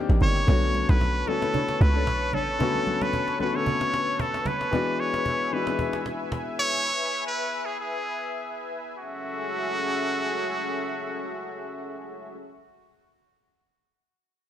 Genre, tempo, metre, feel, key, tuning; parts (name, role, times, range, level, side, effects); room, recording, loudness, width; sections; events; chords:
amapiano; 113 BPM; 4/4; swing 55% on 16ths; F# minor; A4 = 440 Hz
warm grand piano; accompaniment; 0.0-6.9 s; D3 to A4; -29 LUFS; left 5 dB
warm analog pad; sustained chords; 0.0-12.4 s; C#4 to D6; -33 LUFS; equal; chorus
tight log drum bass; bass; 0.1-2.6 s; G1 to C#2; -22 LUFS; right 1 dB
cajon; drums; 0.1-6.8 s; -34 LUFS; right 1 dB
trumpet with straight mute; melody; 0.2-12.4 s; F#4 to C#5; -28 LUFS; equal; ping-pong delay
deep mellow chord stab; stabs; 0.2-2.4 s; D4 to D5; -34 LUFS; left 3 dB; chorus, ping-pong delay
congas; percussion; 0.2-4.6 s; -34 LUFS; right 4 dB
studio reverb; dark, warm production; -24 LUFS; side -10 dB against mid
0.0-9.0 A section; 9.0-13.2 B section
0.5 Bm9; 4.7 E7; 9.0 F#m9